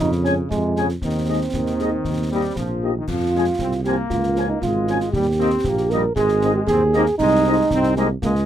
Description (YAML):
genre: military-style march for wind band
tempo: 117 BPM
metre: 2/4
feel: straight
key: Ab major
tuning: A4 = 440 Hz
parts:
  - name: warm euphonium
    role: second line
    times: 0.0-8.3 s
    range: Ab3 to Bb4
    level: -21 LUFS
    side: right 3 dB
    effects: none
  - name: bright trombone section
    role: sustained chords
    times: 0.0-8.5 s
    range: C3 to C4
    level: -26 LUFS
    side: left 2 dB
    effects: none
  - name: mellow tuba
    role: bass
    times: 0.0-8.5 s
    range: Ab1 to F2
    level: -22 LUFS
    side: right 1 dB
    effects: none
  - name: concert snare drum, concert bass drum and clash cymbals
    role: drums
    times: 0.1-8.5 s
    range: none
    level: -31 LUFS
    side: left 1 dB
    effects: none
  - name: mellow trumpet section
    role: melody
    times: 0.2-8.1 s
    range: Eb5 to Ab5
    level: -26 LUFS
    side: left 3 dB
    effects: none
  - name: dark French horn section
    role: accompaniment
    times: 0.2-8.1 s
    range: F3 to Ab4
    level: -25 LUFS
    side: left 4 dB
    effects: none
room: little or no reverb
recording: close, detailed microphones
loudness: -17 LUFS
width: side -10 dB against mid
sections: 0.0-8.5 A section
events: none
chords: 0.0 Db/F; 1.0 Ab/Eb; 2.1 Eb; 3.1 F5; 4.1 Db; 5.1 Eb; 6.2 Ab; 7.2 Ab/C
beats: | 0.00 0.51 | 1.03 1.54 | 2.06 2.57 | 3.08 3.60 | 4.11 4.62 | 5.14 5.65 | 6.17 6.68 | 7.19 7.71 | 8.22